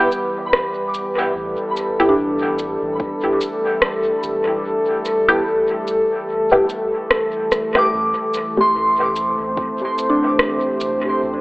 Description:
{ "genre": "ambient dub", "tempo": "73 BPM", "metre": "4/4", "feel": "swing 57% on 16ths", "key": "unclear", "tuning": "A4 = 441 Hz", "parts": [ { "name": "warbly tape-like pad", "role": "sustained chords", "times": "0.0-11.4 s", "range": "E3 to C5", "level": "-20 LUFS", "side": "equal", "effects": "chorus, built-in reverb" }, { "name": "soft synth bell", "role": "arpeggios", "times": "0.0-11.4 s", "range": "D4 to D6", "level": "-21 LUFS", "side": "equal", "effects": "chorus, low-pass filter, dub echo" }, { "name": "filtered dub chord stab", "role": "stabs", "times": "0.0-8.7 s", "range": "A3 to G4", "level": "-20 LUFS", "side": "equal", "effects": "phaser, wide subtle chorus, dub echo" }, { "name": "electronic cabasa and rim click", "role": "drums", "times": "0.1-11.0 s", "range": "none", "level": "-20 LUFS", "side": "equal", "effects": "dub echo" }, { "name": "soft dub sub bass", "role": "bass", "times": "1.4-11.4 s", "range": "E1 to A1", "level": "-37 LUFS", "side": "equal", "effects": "none" }, { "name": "electronic kick drum", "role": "drums", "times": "3.0-3.2, 9.6-9.8 s", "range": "none", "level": "-29 LUFS", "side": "equal", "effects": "none" } ], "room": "moderate plate reverb, RT60 1.9 s, digital ambience", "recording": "echo-heavy mix, telephone sound", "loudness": "-16 LUFS", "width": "side -23 dB against mid", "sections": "0.0-11.4 A section", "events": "drum fill 7.5-7.9", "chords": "0.0 Em; 7.9 Am7", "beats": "0.53 | 1.35 2.18 3.00 3.82 | 4.64 5.46 6.29 7.11 | 7.93 8.75 9.57 10.39 | 11.22" }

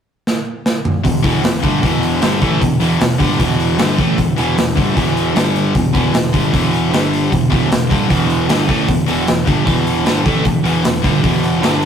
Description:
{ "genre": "hard rock", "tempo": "153 BPM", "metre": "4/4", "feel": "straight", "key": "E minor", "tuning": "A4 = 443 Hz", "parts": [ { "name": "big rock drum kit", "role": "drums", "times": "0.3-11.9 s", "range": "hi-hat, kick drum, snare drum, toms", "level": "-17 LUFS", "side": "equal", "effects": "none" }, { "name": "high-gain distorted guitar", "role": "riff", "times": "1.0-11.9 s", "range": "E2 to A3", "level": "-19 LUFS", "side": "left 6 dB", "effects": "distortion" }, { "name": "overdriven semi-hollow guitar", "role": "riff", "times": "1.0-11.9 s", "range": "E2 to A3", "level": "-17 LUFS", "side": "right 3 dB", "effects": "none" }, { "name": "modern bright picked electric bass", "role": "bass", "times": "1.0-11.9 s", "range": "E1 to A1", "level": "-22 LUFS", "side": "equal", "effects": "none" } ], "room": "light reverb", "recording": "rough rehearsal-room recording, tube saturation", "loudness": "-13 LUFS", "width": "side -8 dB against mid", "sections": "0.0-1.0 A section; 1.0-11.9 B section", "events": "drum fill 0.3-1.0", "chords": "0.0 N.C.; 1.0 Em; 5.4 G5; 5.7 Em; 6.9 G5; 7.3 Em", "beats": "0.26 0.65 | 1.04 1.43 1.82 2.21 | 2.61 3.00 3.39 3.78 | 4.17 4.57 4.96 5.35 | 5.74 6.13 6.53 6.92 | 7.31 7.70 8.10 8.49 | 8.88 9.27 9.66 10.06 | 10.45 10.84 11.23 11.62" }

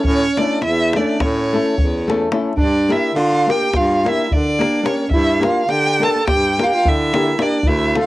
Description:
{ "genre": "balkan folk, Balkan wedding band", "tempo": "214 BPM (eighths)", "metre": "9/8", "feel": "straight", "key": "unclear", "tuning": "A4 = 444 Hz", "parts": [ { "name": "rich violin", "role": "melody", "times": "0.0-8.1 s", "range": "C#5 to A5", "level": "-19 LUFS", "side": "right 1 dB", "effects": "cassette tape" }, { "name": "mellow clarinet", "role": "second line", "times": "0.0-8.1 s", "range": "C#4 to A4", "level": "-21 LUFS", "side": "right 2 dB", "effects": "cassette tape" }, { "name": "davul", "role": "percussion", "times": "0.0-8.1 s", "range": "none", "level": "-21 LUFS", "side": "left 1 dB", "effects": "none" }, { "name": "clear baritone saxophone", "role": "bass", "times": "0.1-8.0 s", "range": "D2 to D3", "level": "-21 LUFS", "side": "equal", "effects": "none" }, { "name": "flamenco guitar", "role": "accompaniment", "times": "0.4-8.1 s", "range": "A3 to Bb4", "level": "-20 LUFS", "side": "left 3 dB", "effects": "cassette tape" } ], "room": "moderate studio reverb, RT60 0.6 s", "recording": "home recording on cassette", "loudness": "-14 LUFS", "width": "side -17 dB against mid", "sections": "0.0-2.6 A section; 2.6-8.1 B section", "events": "none", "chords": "0.0 A; 2.6 Gm", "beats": "| 0.05 0.33 0.61 0.89 1.17 1.45 1.73 2.01 2.29 | 2.57 2.85 3.13 3.41 3.69 3.98 4.25 4.54 4.82 | 5.10 5.38 5.66 5.94 6.22 6.50 6.79 7.07 7.35 | 7.63 7.91" }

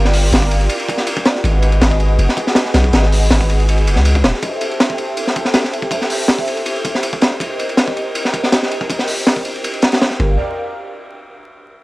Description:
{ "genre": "drum and bass, jungle", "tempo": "161 BPM", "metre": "4/4", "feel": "straight", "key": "unclear", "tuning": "A4 = 443 Hz", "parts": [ { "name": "lush unison pad", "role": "sustained chords", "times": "0.0-10.4 s", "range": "F4 to F5", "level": "-22 LUFS", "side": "equal", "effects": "chorus" }, { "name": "long sustained 808-style bass", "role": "bass", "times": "0.0-4.3, 10.2-10.4 s", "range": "Eb1 to C#2", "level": "-13 LUFS", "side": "equal", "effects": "none" }, { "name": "crunchy breakbeat drum kit", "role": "drums", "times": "0.0-10.3 s", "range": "hi-hat, kick drum, ride cymbal, snare drum", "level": "-16 LUFS", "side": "equal", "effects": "high-pass filter on kick, high-pass filter on cymbals, high-pass filter on hats, high-pass filter on snare, high-pass filter on room" } ], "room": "small room ambience", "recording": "dry, gritty hardware recording, vinyl crackle", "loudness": "-13 LUFS", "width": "side -20 dB against mid", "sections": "0.0-10.4 A section; 10.4-11.8 B section", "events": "filter sweep on analog synth pad 0.0-10.4", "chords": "0.0 Gm7; 1.4 Abm7; 4.4 Am7; 7.4 Cm7; 10.2 Gm7; 10.4 N.C.", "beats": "0.32 0.70 1.07 | 1.44 1.81 2.19 2.56 | 2.93 3.31 3.68 4.05 | 4.42 4.80 5.17 5.54 | 5.91 6.29 6.66 7.03 | 7.41 7.78 8.15 8.52 | 8.89 9.27 9.64 10.01" }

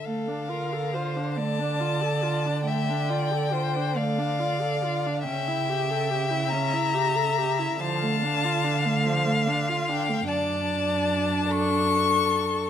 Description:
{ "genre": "classical, slow romantic movement for string quartet", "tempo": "44-49 BPM (dotted quarters)", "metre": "12/8", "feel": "rubato", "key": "D minor", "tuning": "A4 = 440 Hz", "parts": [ { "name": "warm violin", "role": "melody", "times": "0.0-12.7 s", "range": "F5 to C#6", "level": "-28 LUFS", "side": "left 8 dB", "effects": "none" }, { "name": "warm cello", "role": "bass", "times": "0.0-12.7 s", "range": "F#2 to D3", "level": "-29 LUFS", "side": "right 4 dB", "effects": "none" }, { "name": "rich violin", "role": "second line", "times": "0.1-12.7 s", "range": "A4 to F5", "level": "-29 LUFS", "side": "left 2 dB", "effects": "none" }, { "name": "warm viola", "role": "accompaniment", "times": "0.1-12.7 s", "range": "F3 to A4", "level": "-30 LUFS", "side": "right 2 dB", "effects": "none" } ], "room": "moderate recital hall reverb, RT60 1.6 s", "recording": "close, detailed microphones", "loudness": "-23 LUFS", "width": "side -9 dB against mid", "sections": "0.1-12.7 A section", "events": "none", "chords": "0.1 Dm; 5.3 A7/C#; 7.8 Dm; 10.3 D/F#", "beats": "| 0.05 1.38 2.67 3.97 | 5.26 6.51 7.79 9.05 | 10.29 11.51" }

